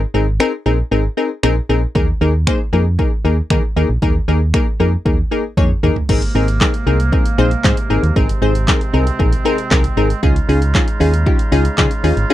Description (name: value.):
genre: dance-pop.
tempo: 116 BPM.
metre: 4/4.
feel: straight.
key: Ab major.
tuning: A4 = 440 Hz.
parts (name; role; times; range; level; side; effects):
solid FM bass; bass; 0.0-12.3 s; Ab1 to Eb3; -16 LUFS; equal; sidechain pumping.
wavetable chord stab; accompaniment; 0.1-12.3 s; Bb3 to Db5; -18 LUFS; left 3 dB; sidechain pumping.
punchy analog drum machine; drums; 0.4-12.3 s; crash cymbal, finger snaps, handclaps, hi-hat, kick drum, snare drum, toms; -17 LUFS; equal; none.
warm woodwind section; sustained chords; 6.1-12.3 s; C3 to F4; -24 LUFS; right 3 dB; sidechain pumping.
room: little or no reverb.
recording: dry, close 1970s-style studio recording.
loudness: -13 LUFS.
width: side -14 dB against mid.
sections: 0.0-6.1 A section; 6.1-12.3 B section.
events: drum fill 5.6-6.1.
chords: 0.0 Abadd9; 2.0 Ebsus4; 6.1 Abadd9; 10.2 Dbadd9.